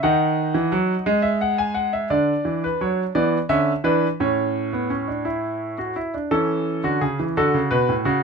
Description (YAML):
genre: classical, baroque-style 3-part fugue for grand piano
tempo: 58 BPM (dotted quarters)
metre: 6/8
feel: straight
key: A major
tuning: A4 = 440 Hz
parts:
  - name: clear baby grand piano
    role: solo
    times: 0.0-8.2 s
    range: A2 to G#5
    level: -19 LUFS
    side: right 1 dB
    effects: none
room: light reverb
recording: close, detailed microphones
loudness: -19 LUFS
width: side -5 dB against mid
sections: 0.0-2.1 A section; 2.1-6.3 B section; 6.3-8.2 C section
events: none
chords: 0.0 D#m; 1.1 E/G#; 2.1 Bm/D; 3.1 E5; 4.2 A; 6.3 A/E; 7.4 Bm7